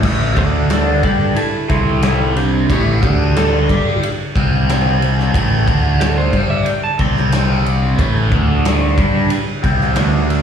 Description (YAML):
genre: blues rock power trio and southern rock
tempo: 91 BPM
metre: 4/4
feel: straight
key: unclear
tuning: A4 = 439 Hz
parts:
  - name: cranked stack guitar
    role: riff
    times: 0.0-10.4 s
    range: A2 to G4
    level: -18 LUFS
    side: equal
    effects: overdrive, phaser, slapback echo
  - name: fuzz fingered electric bass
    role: bass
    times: 0.0-10.4 s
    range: A1 to G2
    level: -17 LUFS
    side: equal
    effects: overdrive
  - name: big rock drum kit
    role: drums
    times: 0.0-10.4 s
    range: crash cymbal, kick drum, ride cymbal, snare drum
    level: -18 LUFS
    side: equal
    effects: none
  - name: lightly driven lead guitar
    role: melody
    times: 0.4-8.3 s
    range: D4 to A5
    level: -22 LUFS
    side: right 3 dB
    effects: slapback echo
room: small room ambience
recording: live gig heard through the venue's PA, club reverb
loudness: -13 LUFS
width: side -8 dB against mid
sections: 0.0-10.4 A section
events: lead electric guitar solo 0.0-10.4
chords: 0.0 A5; 0.4 D5; 1.0 A5; 1.7 C5; 2.7 A5; 3.0 D5; 3.7 Gsus2; 4.4 C5; 5.4 A5; 5.7 D5; 6.3 Gsus24; 7.0 C5; 8.0 A5; 8.3 D5; 9.0 Csus2